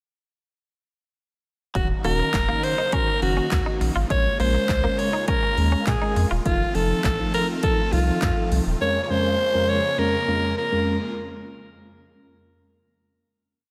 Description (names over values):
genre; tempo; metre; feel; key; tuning
dance-pop; 102 BPM; 4/4; straight; Bb minor; A4 = 440 Hz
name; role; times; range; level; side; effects
mellow tine electric piano; accompaniment; 1.7-11.0 s; F2 to Bb4; -30 LUFS; equal; analog chorus, sidechain pumping
raspy alto saxophone; melody; 1.8-11.0 s; F4 to Db5; -26 LUFS; equal; delay, slapback echo
supersaw chords; sustained chords; 1.8-11.1 s; F2 to F4; -35 LUFS; equal; phaser, sidechain pumping
direct-recorded clean electric guitar; riff; 1.8-6.4 s; Gb3 to F4; -35 LUFS; equal; ensemble chorus, slapback echo
warm sub bass; bass; 1.8-8.8 s; Eb1 to Bb2; -26 LUFS; equal; sidechain pumping
punchy analog drum machine; drums; 1.8-8.7 s; handclaps, hi-hat, kick drum, snare drum; -28 LUFS; equal; none
room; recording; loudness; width
moderate concert hall reverb, RT60 2.4 s; big arena sound; -22 LUFS; mono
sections
1.8-11.2 chorus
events
none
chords
1.8 Ebm7; 4.1 Bbm7; 6.5 F7; 8.8 Bbm7/F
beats
| 1.75 2.34 2.93 3.52 | 4.10 4.69 5.28 5.87 | 6.46 7.04 7.63 8.22 | 8.81 9.40 9.99 10.57